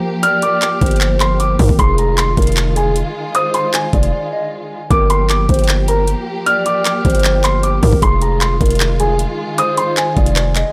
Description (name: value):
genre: hip hop, trap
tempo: 154 BPM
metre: 4/4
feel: half-time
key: G phrygian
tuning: A4 = 440 Hz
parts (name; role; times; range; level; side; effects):
- felt-muted upright piano; melody; 0.0-10.7 s; Ab5 to F6; -22 LUFS; equal; low-pass filter
- warm studio string section; sustained chords; 0.0-10.7 s; Eb3 to G4; -26 LUFS; equal; none
- hollow clarinet-like synth lead; second line; 0.2-10.7 s; Ab4 to Eb5; -23 LUFS; equal; chorus, tape echo
- trap drum kit; drums; 0.2-10.6 s; handclaps, hi-hat, kick drum, rim click; -20 LUFS; equal; none
- distorted 808-style bass; bass; 0.8-10.6 s; F1 to G2; -18 LUFS; equal; distortion
room: little or no reverb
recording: dry, gritty hardware recording, transformer saturation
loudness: -15 LUFS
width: mono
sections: 0.0-4.9 A section; 4.9-10.7 A section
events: break 4.1-4.9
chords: 0.0 Gm7; 1.8 Fm7; 4.9 Gm7; 8.0 Fm7